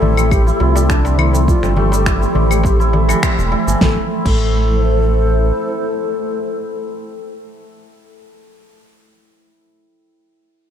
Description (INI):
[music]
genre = organic downtempo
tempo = 103 BPM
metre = 4/4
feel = straight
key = A minor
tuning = A4 = 440 Hz
[part]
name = bass bansuri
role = melody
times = 0.0-6.9 s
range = D4 to A4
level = -22 LUFS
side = left 2 dB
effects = ping-pong delay
[part]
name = granular cloud pad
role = sustained chords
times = 0.0-6.9 s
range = F3 to C5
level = -21 LUFS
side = right 2 dB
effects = built-in reverb, sidechain pumping
[part]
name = santur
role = arpeggios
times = 0.0-8.7 s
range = E3 to A4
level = -23 LUFS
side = left 1 dB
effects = ping-pong delay
[part]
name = round analog bass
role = bass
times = 0.0-5.5 s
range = E1 to C2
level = -15 LUFS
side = equal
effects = sidechain pumping
[part]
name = darbuka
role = percussion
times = 0.0-3.6 s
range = none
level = -24 LUFS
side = left 3 dB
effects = none
[part]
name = deep house drum kit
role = drums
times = 0.2-4.4 s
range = cabasa, claves, crash cymbal, finger snaps, snare drum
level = -21 LUFS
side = equal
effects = none
[part]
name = electronic kick drum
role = drums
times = 0.3-4.4 s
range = none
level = -18 LUFS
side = equal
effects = none
[sound]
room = light reverb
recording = dark, warm production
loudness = -13 LUFS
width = side -9 dB against mid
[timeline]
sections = 0.0-3.8 A section; 3.8-6.1 B section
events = band accent 3.2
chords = 0.0 Fadd9; 3.8 Am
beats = 0.32 0.90 | 1.48 2.06 2.65 3.23 | 3.81 4.39 4.98 5.56